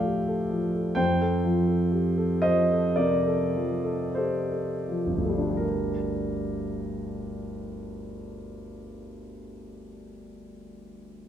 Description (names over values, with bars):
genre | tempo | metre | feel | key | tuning
classical, impressionist solo piano | 41-68 BPM | 4/4 | rubato | G minor | A4 = 440 Hz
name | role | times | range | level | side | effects
warm concert grand piano | solo | 0.0-11.3 s | G1 to G5 | -26 LUFS | equal | none
room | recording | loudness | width
moderate scoring stage reverb, RT60 1.6 s | minimal, uncompressed stereo recording | -24 LUFS | side -9 dB against mid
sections
0.0-5.6 A section; 5.6-11.3 B section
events
slowing down 0.0-5.6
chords
0.0 Dm9; 1.0 Fadd9; 5.6 Gm